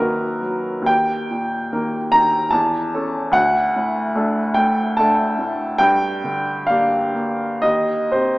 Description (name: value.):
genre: classical, romantic character piece for solo piano.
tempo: 57-75 BPM.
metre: 3/4.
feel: rubato.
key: G minor.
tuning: A4 = 440 Hz.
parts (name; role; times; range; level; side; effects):
warm upright piano; solo; 0.0-8.4 s; D2 to Bb5; -17 LUFS; equal; none.
room: moderate concert hall reverb, RT60 2.4 s.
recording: small speaker sound.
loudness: -17 LUFS.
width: side -21 dB against mid.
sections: 0.0-8.4 A section.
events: none.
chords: 0.0 Ebm/Gb; 0.9 Eb; 2.5 A/E; 3.3 D; 5.8 Gm; 7.6 Cm/Eb.